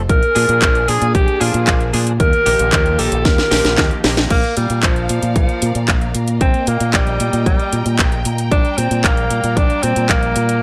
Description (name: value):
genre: italo disco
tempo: 114 BPM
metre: 4/4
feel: straight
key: Bb major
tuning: A4 = 440 Hz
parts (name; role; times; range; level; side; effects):
- warm symphonic string section; sustained chords; 0.0-10.6 s; Eb3 to Bb5; -28 LUFS; equal; none
- fingered electric bass with an envelope filter; bass; 0.0-10.6 s; Bb1 to Bb2; -21 LUFS; equal; tube saturation
- warm alto saxophone; melody; 0.1-10.6 s; F3 to Bb4; -20 LUFS; equal; none
- electronic kick drum; drums; 0.1-10.2 s; none; -19 LUFS; equal; none
- house drum kit; drums; 0.1-10.6 s; crash cymbal, handclaps, hi-hat, snare drum; -22 LUFS; equal; none
- direct-recorded clean electric guitar; stabs; 0.4-4.3 s; F3 to Ab4; -27 LUFS; equal; analog chorus
room: little or no reverb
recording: dry, gritty hardware recording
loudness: -16 LUFS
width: mono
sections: 0.0-4.3 A section; 4.3-10.6 B section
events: drum fill 3.3-4.3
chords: 0.1 Bb7; 2.2 Ebadd9; 4.3 Bb; 6.4 Eb/Bb; 8.5 Gm/Bb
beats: | 0.10 0.62 1.15 1.67 | 2.20 2.73 3.25 3.78 | 4.30 4.83 5.36 5.88 | 6.41 6.94 7.46 7.99 | 8.52 9.04 9.57 10.10 | 10.62